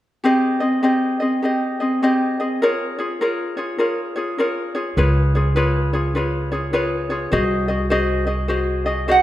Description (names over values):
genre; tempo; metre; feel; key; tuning
Hawaiian; 102 BPM; 4/4; swing 62% on 8ths; Ab major; A4 = 438 Hz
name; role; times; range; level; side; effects
ukulele; accompaniment; 0.2-9.2 s; C4 to Eb5; -19 LUFS; left 1 dB; none
upright bass; bass; 5.0-9.2 s; C2 to Db2; -20 LUFS; equal; none
lap resonator guitar; melody; 9.1-9.2 s; Gb5; -11 LUFS; right 4 dB; none
room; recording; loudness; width
moderate recital hall reverb, RT60 1.7 s; none; -18 LUFS; side -14 dB against mid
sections
0.3-9.2 A section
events
none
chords
0.3 Abmaj7; 2.6 Bbm7; 5.0 Db7; 7.3 Ab7/C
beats
| 0.25 0.84 1.43 2.02 | 2.61 3.20 3.79 4.38 | 4.97 5.56 6.15 6.74 | 7.33 7.92 8.50 9.09